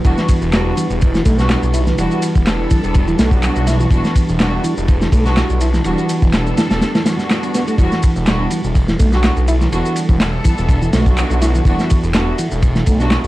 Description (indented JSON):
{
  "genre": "breakbeat, breaks",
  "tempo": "124 BPM",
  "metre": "4/4",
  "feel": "swing 54% on 16ths",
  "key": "E minor",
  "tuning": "A4 = 440 Hz",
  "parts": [
    { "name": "deep dark ambient pad", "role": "sustained chords", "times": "0.0-13.3 s", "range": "G3 to A5", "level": "-26 LUFS", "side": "equal", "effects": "chorus, built-in reverb, sidechain pumping" },
    { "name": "percussive tonewheel organ", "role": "riff", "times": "0.0-13.0 s", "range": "E3 to E4", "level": "-21 LUFS", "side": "equal", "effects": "chorus vibrato, slow rotary speaker, tube saturation, digital delay" },
    { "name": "muted studio string section", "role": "stabs", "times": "0.0-13.1 s", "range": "G3 to A4", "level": "-22 LUFS", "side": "right 1 dB", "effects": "digital delay" },
    { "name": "phased detuned saw bass", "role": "bass", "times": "0.0-13.3 s", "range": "E1 to B1", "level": "-18 LUFS", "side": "equal", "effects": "phaser" },
    { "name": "crunchy breakbeat drum kit", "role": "drums", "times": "0.0-13.3 s", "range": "kick drum, ride cymbal, snare drum", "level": "-16 LUFS", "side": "equal", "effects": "none" },
    { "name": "punchy analog drum machine", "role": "drums", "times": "0.0-13.3 s", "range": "handclaps, ride cymbal, shaker", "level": "-28 LUFS", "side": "equal", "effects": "none" }
  ],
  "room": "light reverb",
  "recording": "dark, warm production, vinyl crackle",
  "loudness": "-13 LUFS",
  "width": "side -17 dB against mid",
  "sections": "0.0-13.3 A section",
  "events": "none",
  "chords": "0.0 Em7"
}